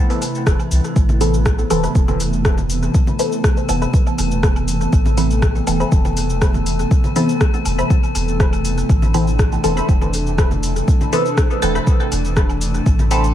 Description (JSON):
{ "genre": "dub techno", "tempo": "121 BPM", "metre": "4/4", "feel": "straight", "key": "A minor", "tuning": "A4 = 439 Hz", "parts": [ { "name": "airy breathy pad", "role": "sustained chords", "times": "0.0-13.3 s", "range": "C3 to E4", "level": "-23 LUFS", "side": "equal", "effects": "chorus, sidechain pumping" }, { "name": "metallic inharmonic drone", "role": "texture", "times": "0.0-13.3 s", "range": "A4 to B4", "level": "-29 LUFS", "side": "left 5 dB", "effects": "chorus, built-in reverb, phaser, sidechain pumping" }, { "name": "soft vintage rhythm box", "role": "drums", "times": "0.1-13.3 s", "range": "cabasa, hi-hat, rim click", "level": "-26 LUFS", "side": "left 1 dB", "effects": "dub echo" }, { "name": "woodblock and congas", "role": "percussion", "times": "0.2-13.1 s", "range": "none", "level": "-32 LUFS", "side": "right 1 dB", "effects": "none" }, { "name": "soft dub sub bass", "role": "bass", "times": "0.5-13.3 s", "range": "E1 to C2", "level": "-20 LUFS", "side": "equal", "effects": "sidechain pumping" }, { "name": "electronic kick drum", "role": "drums", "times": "0.5-13.0 s", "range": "none", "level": "-15 LUFS", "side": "equal", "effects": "overdrive" }, { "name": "filtered dub chord stab", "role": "riff", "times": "1.2-13.3 s", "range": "A4 to B5", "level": "-29 LUFS", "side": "left 1 dB", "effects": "wide subtle chorus, sidechain pumping, dub echo" }, { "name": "filtered dub chord stab", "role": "stabs", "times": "1.2-13.3 s", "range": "E3 to A4", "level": "-22 LUFS", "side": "equal", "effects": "phaser, sidechain pumping, dub echo" } ], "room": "light reverb, digital ambience", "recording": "echo-heavy mix, vinyl crackle", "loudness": "-14 LUFS", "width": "side -11 dB against mid", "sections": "0.0-13.3 A section", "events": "none", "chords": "0.0 Amadd9", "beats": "0.46 | 0.96 1.46 1.95 2.45 | 2.94 3.44 3.94 4.43 | 4.93 5.42 5.92 6.42 | 6.91 7.41 7.90 8.40 | 8.89 9.39 9.89 10.38 | 10.88 11.37 11.87 12.37 | 12.86" }